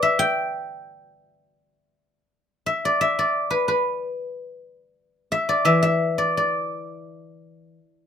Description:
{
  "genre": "chinese traditional, Chinese solo plucked strings",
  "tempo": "83-92 BPM",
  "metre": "2/4",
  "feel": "rubato",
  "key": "unclear",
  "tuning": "A4 = 438 Hz",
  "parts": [
    { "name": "guzheng", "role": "solo", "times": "0.0-8.1 s", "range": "E3 to G5", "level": "-20 LUFS", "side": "left 1 dB", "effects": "none" }
  ],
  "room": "light reverb",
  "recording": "rough home demo mix",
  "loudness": "-20 LUFS",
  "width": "side -8 dB against mid",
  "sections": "0.0-1.6 A section; 1.6-8.1 B section",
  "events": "none",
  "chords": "none"
}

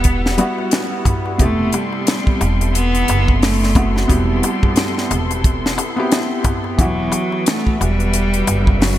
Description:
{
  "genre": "trip hop",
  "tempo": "89 BPM",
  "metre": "4/4",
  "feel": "swing 59% on 16ths",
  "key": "unclear",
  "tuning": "A4 = 440 Hz",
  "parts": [
    { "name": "clear cello", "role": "melody", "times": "0.0-9.0 s", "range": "F#3 to B3", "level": "-22 LUFS", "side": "equal", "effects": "tape echo" },
    { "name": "felt-muted upright piano", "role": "accompaniment", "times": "0.0-9.0 s", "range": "C3 to G4", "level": "-22 LUFS", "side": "left 1 dB", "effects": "tremolo, vintage 12-bit sampler grit, low-pass filter, tape echo" },
    { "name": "muted symphonic string section", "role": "sustained chords", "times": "0.0-9.0 s", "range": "G3 to C6", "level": "-27 LUFS", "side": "left 2 dB", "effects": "vintage 12-bit sampler grit" },
    { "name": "upright bass", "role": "bass", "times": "0.0-9.0 s", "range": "E1 to F#1", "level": "-19 LUFS", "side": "equal", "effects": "none" },
    { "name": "tight funk drum kit", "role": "drums", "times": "0.0-9.0 s", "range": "hi-hat, kick drum, snare drum", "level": "-17 LUFS", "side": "equal", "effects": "studio reverb, gated reverb" },
    { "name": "bowed-like drone", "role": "texture", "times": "0.0-9.0 s", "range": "B3", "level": "-30 LUFS", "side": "right 2 dB", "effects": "none" },
    { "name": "darbuka", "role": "percussion", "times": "0.1-9.0 s", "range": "none", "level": "-27 LUFS", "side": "left 2 dB", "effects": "none" }
  ],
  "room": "light reverb, small room ambience",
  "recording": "bright 1980s-style digital production",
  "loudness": "-14 LUFS",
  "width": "side -13 dB against mid",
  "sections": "0.0-9.0 A section",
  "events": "none",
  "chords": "0.0 Emadd9; 1.4 Am7/E; 6.8 Emadd9"
}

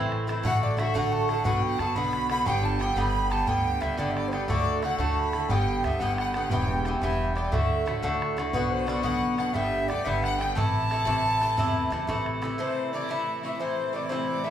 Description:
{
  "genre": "celtic folk, Celtic slide",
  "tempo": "118 BPM (dotted quarters)",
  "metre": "12/8",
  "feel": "straight",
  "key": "A dorian",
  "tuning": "A4 = 440 Hz",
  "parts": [
    { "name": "Irish bouzouki", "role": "accompaniment", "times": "0.0-14.5 s", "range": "G2 to G4", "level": "-28 LUFS", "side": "equal", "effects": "none" },
    { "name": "upright bass", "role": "bass", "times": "0.0-12.5 s", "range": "E1 to F#2", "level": "-31 LUFS", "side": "equal", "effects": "none" },
    { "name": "bodhran", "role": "percussion", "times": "0.1-12.5 s", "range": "none", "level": "-34 LUFS", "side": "equal", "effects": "none" },
    { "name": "bright fiddle", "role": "second line", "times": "0.4-14.5 s", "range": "B4 to B5", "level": "-36 LUFS", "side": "left 3 dB", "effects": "none" },
    { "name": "bright baroque flute", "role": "melody", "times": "0.5-14.5 s", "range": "B4 to B5", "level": "-30 LUFS", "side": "right 1 dB", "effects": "none" },
    { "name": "rich studio string section", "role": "drone", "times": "12.6-14.5 s", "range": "A2 to E3", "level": "-40 LUFS", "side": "right 1 dB", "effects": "none" }
  ],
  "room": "wet large studio reverb, RT60 0.8 s",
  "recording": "band playing live in one room",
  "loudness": "-24 LUFS",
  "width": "side -10 dB against mid",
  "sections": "0.0-12.6 A section; 12.6-14.5 B section",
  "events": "none",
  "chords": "0.4 D/A; 1.4 Bm; 2.5 G; 4.5 D; 5.5 G; 6.5 Em; 7.5 D; 8.5 Bm; 9.6 G; 10.6 Am"
}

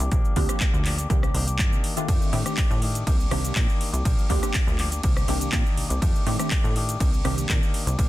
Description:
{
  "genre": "filtered disco house",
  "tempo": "122 BPM",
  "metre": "4/4",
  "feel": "straight",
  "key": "C dorian",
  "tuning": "A4 = 440 Hz",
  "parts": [
    { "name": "electric guitar with an envelope filter", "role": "riff", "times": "0.0-8.1 s", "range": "Eb3 to G4", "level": "-32 LUFS", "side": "left 4 dB", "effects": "sidechain pumping" },
    { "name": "plucky analog bass", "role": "bass", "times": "0.0-8.1 s", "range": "C2 to C3", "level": "-26 LUFS", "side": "equal", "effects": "sidechain pumping" },
    { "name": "house drum kit", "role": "drums", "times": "0.0-8.1 s", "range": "handclaps, hi-hat, ride cymbal, rim click, shaker", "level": "-30 LUFS", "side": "equal", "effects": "overdrive, sidechain pumping on hats, sidechain pumping on perc, sidechain pumping on cymbals" },
    { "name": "electronic kick drum", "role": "drums", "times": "0.1-8.1 s", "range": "none", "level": "-23 LUFS", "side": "equal", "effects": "overdrive" },
    { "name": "funky polysynth comp", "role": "accompaniment", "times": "0.4-7.6 s", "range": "Eb3 to G4", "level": "-30 LUFS", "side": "right 1 dB", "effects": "chorus, phaser, vintage 12-bit sampler grit, sidechain pumping" }
  ],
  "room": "digital ambience",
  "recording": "dense, heavily limited modern master",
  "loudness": "-21 LUFS",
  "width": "side -16 dB against mid",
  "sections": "0.0-8.1 A section",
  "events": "none",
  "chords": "0.1 Bb6; 1.1 Cm9; 2.1 F13; 3.1 Cm9; 4.1 Bb6; 5.0 Cm9; 6.0 F13; 7.0 Cm9"
}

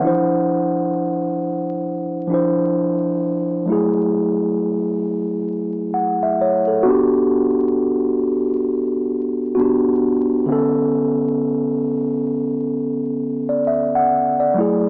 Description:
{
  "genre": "hip hop",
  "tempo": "66 BPM",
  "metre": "4/4",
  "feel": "swing 59% on 16ths",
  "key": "unclear",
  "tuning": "A4 = 439 Hz",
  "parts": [
    { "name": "mellow tine electric piano", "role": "solo", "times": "0.0-14.9 s", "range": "D3 to F#5", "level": "-16 LUFS", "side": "equal", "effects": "medium stereo tremolo, cassette tape, low-pass filter" }
  ],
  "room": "light reverb",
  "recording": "dry, gritty hardware recording, vinyl crackle, small speaker sound",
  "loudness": "-16 LUFS",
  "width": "side -35 dB against mid",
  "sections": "0.0-14.9 A section",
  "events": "none",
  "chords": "0.0 Dm9; 3.7 F#m9; 6.8 Gmaj7; 10.5 Bm9"
}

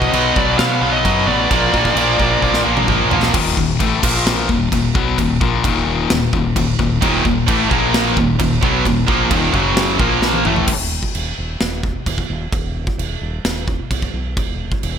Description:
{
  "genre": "heavy metal",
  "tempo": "131 BPM",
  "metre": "4/4",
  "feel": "straight",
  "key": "Eb harmonic minor",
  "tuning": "A4 = 442 Hz",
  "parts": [
    { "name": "high-gain lead guitar", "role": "melody", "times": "0.0-2.6 s", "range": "D5 to F5", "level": "-20 LUFS", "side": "left 1 dB", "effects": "distortion, ping-pong delay" },
    { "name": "heavy high-gain guitar", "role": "riff", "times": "0.0-10.7 s", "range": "Eb2 to B3", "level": "-17 LUFS", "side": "left 7 dB", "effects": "distortion" },
    { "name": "tight distorted guitar", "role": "riff", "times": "0.0-3.3, 7.0-10.7 s", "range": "Eb2 to B3", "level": "-19 LUFS", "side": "right 14 dB", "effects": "distortion" },
    { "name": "growling fingered electric bass", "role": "bass", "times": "0.0-15.0 s", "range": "Eb1 to B2", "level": "-23 LUFS", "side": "equal", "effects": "overdrive" },
    { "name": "big rock drum kit", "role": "drums", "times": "0.0-14.9 s", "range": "china cymbal, crash cymbal, kick drum, snare drum, toms", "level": "-20 LUFS", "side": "right 1 dB", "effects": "gated reverb" }
  ],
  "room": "light reverb, small room reverb",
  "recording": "bright 1980s-style digital production",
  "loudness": "-14 LUFS",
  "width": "side -8 dB against mid",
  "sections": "0.0-3.3 A section; 3.3-10.7 B section; 10.7-15.0 C section",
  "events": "drum fill 2.4-3.3, 10.2-10.7",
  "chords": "0.0 B; 1.5 Bb; 3.3 Eb5; 4.0 Bb5; 4.5 Eb5; 7.7 Bb5; 8.2 Ebm; 9.5 Gb5; 10.0 Bb5; 10.5 A5; 10.7 N.C."
}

